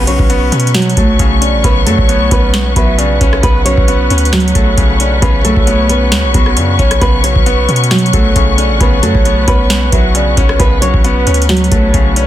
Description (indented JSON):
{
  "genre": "hip hop, trap",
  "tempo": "134 BPM",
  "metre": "4/4",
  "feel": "half-time",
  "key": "unclear",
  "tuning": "A4 = 439 Hz",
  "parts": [
    { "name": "nylon-string guitar", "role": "melody", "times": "0.0-12.3 s", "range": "F#3 to C#5", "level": "-16 LUFS", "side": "right 2 dB", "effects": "low-pass filter, tape echo" },
    { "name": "clear concert grand piano", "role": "accompaniment", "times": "0.0-12.3 s", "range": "C#3 to C#4", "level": "-19 LUFS", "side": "left 6 dB", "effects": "low-pass filter" },
    { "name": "dark symphonic string section", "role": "sustained chords", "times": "0.0-12.3 s", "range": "B4 to C#6", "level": "-19 LUFS", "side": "left 3 dB", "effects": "none" },
    { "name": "long sustained 808-style bass", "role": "bass", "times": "0.0-12.3 s", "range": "A1 to B2", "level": "-14 LUFS", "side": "equal", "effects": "none" },
    { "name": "hollow clarinet-like synth lead", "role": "second line", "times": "0.1-12.3 s", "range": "B4 to E5", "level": "-20 LUFS", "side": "right 4 dB", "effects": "chorus, tape echo" },
    { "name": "booming analog drum machine", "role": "drums", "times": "0.1-12.3 s", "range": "hi-hat, kick drum, rim click, snare drum", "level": "-13 LUFS", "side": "equal", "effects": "overdrive" }
  ],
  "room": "little or no reverb",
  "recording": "dense, heavily limited modern master",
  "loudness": "-8 LUFS",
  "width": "side -12 dB against mid",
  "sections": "0.0-12.3 A section",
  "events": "none",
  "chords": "0.0 Bsus2"
}